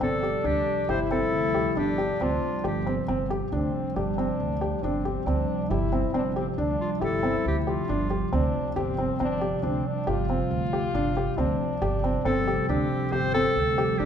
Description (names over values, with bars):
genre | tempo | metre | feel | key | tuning
contemporary instrumental, chamber music in an uneven meter | 137 BPM | 7/4 | straight | unclear | A4 = 440 Hz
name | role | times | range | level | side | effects
bright clarinet | melody | 0.0-14.1 s | F4 to C5 | -28 LUFS | equal | none
clear French horn | second line | 0.0-14.1 s | C4 to F4 | -30 LUFS | left 4 dB | none
ethereal airy pad | sustained chords | 0.0-14.1 s | C3 to G3 | -31 LUFS | right 2 dB | ensemble chorus, built-in reverb
felt-muted upright piano | arpeggios | 0.0-14.1 s | C4 to G4 | -29 LUFS | left 1 dB | none
upright bass | bass | 0.0-14.1 s | G1 to D2 | -30 LUFS | right 2 dB | none
room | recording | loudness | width
moderate scoring stage reverb, RT60 1.7 s | minimal, uncompressed stereo recording | -24 LUFS | side -8 dB against mid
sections
0.0-14.1 A section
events
none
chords
0.0 G7sus4